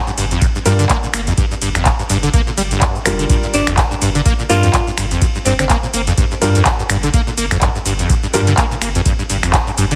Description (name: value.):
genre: acid house.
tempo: 125 BPM.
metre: 4/4.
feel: swing 56% on 16ths.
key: G minor.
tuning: A4 = 438 Hz.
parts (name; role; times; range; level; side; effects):
saturated sub bass; bass; 0.0-10.0 s; F1 to G2; -22 LUFS; equal; sidechain pumping.
acid bass, saw; riff; 0.1-10.0 s; G1 to Bb3; -21 LUFS; equal; tube saturation, ensemble chorus, digital delay.
electro analog drum machine; drums; 0.1-10.0 s; cabasa, finger snaps, handclaps, hi-hat, ride cymbal; -22 LUFS; equal; none.
electronic kick drum; drums; 0.4-9.6 s; none; -19 LUFS; equal; none.
dark grand piano; stabs; 0.7-8.5 s; G3 to Bb4; -23 LUFS; equal; digital delay.
growling alto saxophone; melody; 3.5-5.7 s; C4 to F4; -23 LUFS; equal; delay.
room: light reverb, digital ambience.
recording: heavily compressed radio sound, multiband compression.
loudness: -15 LUFS.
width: mono.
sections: 0.0-10.0 A section.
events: none.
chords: 0.0 Gm7.